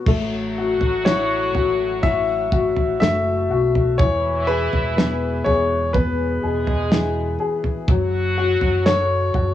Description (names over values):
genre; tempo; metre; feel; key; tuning
pop ballad; 62 BPM; 4/4; straight; unclear; A4 = 441 Hz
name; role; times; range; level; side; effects
warm upright piano; accompaniment; 0.0-9.5 s; E3 to A4; -23 LUFS; left 5 dB; cassette tape, plate reverb
muted French horn section; second line; 0.1-9.3 s; E3 to G#4; -27 LUFS; right 1 dB; cassette tape, plate reverb
fingered electric bass; bass; 0.1-9.5 s; E1 to B1; -25 LUFS; right 1 dB; none
damped 70s drum kit; drums; 0.1-9.5 s; crash cymbal, kick drum, snare drum, toms; -20 LUFS; right 1 dB; cassette tape
bright grand piano; melody; 1.0-9.5 s; B4 to E5; -22 LUFS; left 2 dB; cassette tape, plate reverb
room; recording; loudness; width
moderate booth ambience, RT60 0.2 s; home recording on cassette, small room ambience; -17 LUFS; side -12 dB against mid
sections
0.1-9.5 A section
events
none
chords
0.1 A6; 4.0 E; 7.9 F#m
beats
| 0.07 1.05 2.03 3.01 | 4.00 4.97 5.94 6.91 | 7.88 8.85